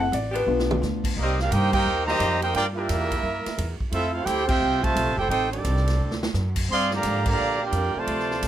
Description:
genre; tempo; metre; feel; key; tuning
jazz, big band swing; 174 BPM; 4/4; swing 64% on 8ths; unclear; A4 = 438 Hz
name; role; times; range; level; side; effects
warm grand piano; accompaniment; 0.0-1.1 s; B3 to F#5; -24 LUFS; left 3 dB; none
upright bass; bass; 0.0-8.5 s; F1 to Bb2; -27 LUFS; equal; none
swinging big-band drum kit; drums; 0.1-8.5 s; crash cymbal, hi-hat, kick drum, ride cymbal, snare drum, toms; -30 LUFS; right 1 dB; none
warm saxophone section; sustained chords; 0.3-0.8 s; F3 to G4; -32 LUFS; right 1 dB; none
clear trumpet section; melody; 1.2-8.5 s; C4 to C6; -24 LUFS; right 2 dB; none
bright trombone section; second line; 1.2-8.5 s; C3 to G4; -29 LUFS; right 2 dB; none
room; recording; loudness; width
moderate club reverb, RT60 0.6 s; none; -21 LUFS; side -11 dB against mid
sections
0.0-1.2 A section; 1.2-8.5 B section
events
grand piano solo 0.0-1.2; drum fill 0.5-0.8, 6.0-6.3; band accent 1.7, 4.4, 7.2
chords
0.5 G7; 1.2 Cm7; 2.5 Gm7; 3.2 F#7; 3.9 Fmaj7; 5.3 Am7b5; 6.0 D7; 6.7 Gm7

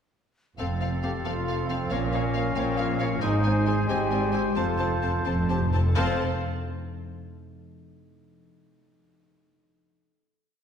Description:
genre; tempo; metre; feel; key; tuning
cinematic, heroic adventure film score; 84-92 BPM (dotted quarters); 6/8; straight; F major; A4 = 440 Hz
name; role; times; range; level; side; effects
bright symphonic violin section; melody; 0.6-6.2 s; F5 to A5; -36 LUFS; left 5 dB; none
concert flute; second line; 0.6-6.2 s; F5 to A5; -37 LUFS; equal; none
warm oboe; second line; 0.6-6.2 s; A4 to C5; -36 LUFS; equal; none
warm symphonic violin section; second line; 0.6-6.2 s; A4 to Db5; -38 LUFS; equal; none
clear symphonic viola section; accompaniment; 0.6-6.2 s; Bb3 to C4; -36 LUFS; right 1 dB; none
warm French horn section; sustained chords; 0.6-6.2 s; C4 to Ab4; -32 LUFS; left 4 dB; none
warm trumpet; stabs; 0.6-6.2 s; C4 to Ab4; -34 LUFS; equal; none
clear symphonic cello section; bass; 0.6-6.2 s; F2 to Bb2; -30 LUFS; equal; none
rich symphonic double bass section; bass; 0.6-6.2 s; F1 to Bb1; -30 LUFS; right 3 dB; none
timpani; percussion; 0.6-1.2, 4.6-6.2 s; F2; -30 LUFS; left 1 dB; none
clear clarinet; second line; 1.2-6.2 s; G4 to G5; -37 LUFS; left 2 dB; none
room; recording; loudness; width
wet scoring stage reverb, RT60 1.8 s; heard from further back in the room; -23 LUFS; side -8 dB against mid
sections
0.6-6.0 theme; 6.0-7.4 final chord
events
slowing down 2.6-6.0; timpani fill 4.6-6.0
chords
0.6 F; 1.9 Bbm; 3.2 Ab; 4.6 F

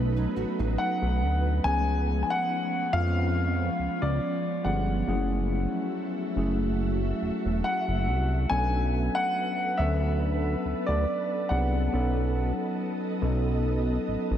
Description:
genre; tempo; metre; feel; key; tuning
R&B; 70 BPM; 4/4; swing 54% on 16ths; unclear; A4 = 441 Hz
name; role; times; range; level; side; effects
mellow tine electric piano; accompaniment; 0.0-14.4 s; E#3 to B4; -31 LUFS; left 1 dB; medium stereo tremolo
ethereal airy pad; sustained chords; 0.0-14.4 s; E#3 to E5; -34 LUFS; right 1 dB; ensemble chorus, built-in reverb
fat analog bass; bass; 0.0-14.4 s; E1 to E#2; -26 LUFS; equal; none
nylon-string guitar; arpeggios; 0.2-1.6 s; F#3 to F#4; -38 LUFS; right 6 dB; ensemble chorus, diffuse ambient delay
warm baby grand piano; melody; 0.8-13.2 s; D5 to G#5; -30 LUFS; left 1 dB; diffuse ambient delay
room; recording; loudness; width
wet church reverb, RT60 3.5 s; dreamy mix soaked in reverb; -25 LUFS; side -10 dB against mid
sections
0.0-14.4 A section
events
none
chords
0.0 B7; 1.6 C#7; 5.1 F#m7; 8.5 Bm7; 11.9 B7

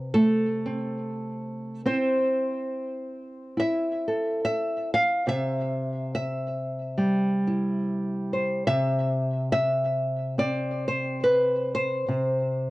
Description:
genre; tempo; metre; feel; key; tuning
folk, solo fingerstyle acoustic guitar; 70 BPM; 4/4; swing 58% on 8ths; C major; A4 = 443 Hz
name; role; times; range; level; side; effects
nylon-string guitar; solo; 0.0-12.7 s; C3 to F5; -24 LUFS; equal; none
room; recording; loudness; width
light reverb; worn, warbling old tape, cassette tape, warbly pitch drift, nothing above 10.7 kHz; -24 LUFS; side -19 dB against mid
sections
0.0-12.7 A section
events
none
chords
0.0 Am/C; 5.3 C; 8.7 N.C.

